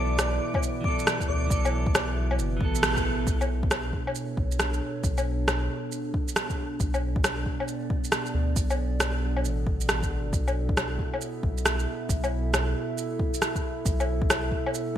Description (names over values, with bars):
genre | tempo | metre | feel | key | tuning
future garage | 136 BPM | 4/4 | swing 64% on 16ths | B minor | A4 = 440 Hz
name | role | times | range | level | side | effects
airy dreamy lead | melody | 0.0-1.6 s | D5 | -33 LUFS | equal | chorus, phaser, cassette tape, digital delay
clean electric guitar | accompaniment | 0.0-3.3 s | E3 to A4 | -33 LUFS | right 3 dB | vintage 12-bit sampler grit, sidechain pumping, digital delay
warbly tape-like pad | sustained chords | 0.0-15.0 s | B2 to E5 | -33 LUFS | right 2 dB | chorus, built-in reverb, vintage 12-bit sampler grit, sidechain pumping
soft dub sub bass | bass | 0.0-14.5 s | F#1 to D2 | -28 LUFS | equal | sidechain pumping
electronic rim click, shaker and woodblock | drums | 0.2-14.9 s | none | -28 LUFS | equal | gated reverb
electronic kick drum | drums | 0.5-15.0 s | none | -29 LUFS | equal | none
room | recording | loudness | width
moderate lush hall reverb, RT60 2.0 s | bright 1980s-style digital production | -24 LUFS | side -11 dB against mid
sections
0.0-3.3 A section; 3.3-15.0 B section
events
band accent 2.8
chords
0.0 Bm7; 10.3 Asus2/B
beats
0.18 0.62 1.06 | 1.51 1.95 2.39 2.83 | 3.27 3.71 4.15 4.59 | 5.04 5.48 5.92 6.36 | 6.80 7.24 7.68 8.12 | 8.56 9.01 9.45 9.89 | 10.33 10.77 11.21 11.65 | 12.10 12.54 12.98 13.42 | 13.86 14.30 14.74